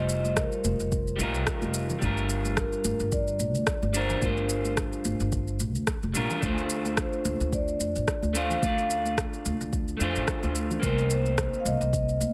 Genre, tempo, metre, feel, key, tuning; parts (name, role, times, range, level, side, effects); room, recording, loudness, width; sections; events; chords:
sunset chillout; 109 BPM; 4/4; swing 56% on 16ths; A4 = 440 Hz
vibraphone with soft mallets; melody; 0.0-12.3 s; Bb4 to F5; -33 LUFS; equal; digital delay
electric guitar through a small old amp; accompaniment; 0.0-12.3 s; G3 to D5; -34 LUFS; equal; digital delay
upright bass; bass; 0.0-12.3 s; F1 to F2; -33 LUFS; equal
electronic shaker and rim click; drums; 0.1-12.3 s; -35 LUFS; equal; overdrive
congas; percussion; 0.3-12.3 s; -39 LUFS; equal
electronic kick drum; drums; 0.4-12.1 s; -34 LUFS; equal; overdrive
little or no reverb; -28 LUFS; mono
0.0-12.3 A section
0.0 F9sus4; 2.0 Gm7; 6.4 Dm7; 10.8 Cm7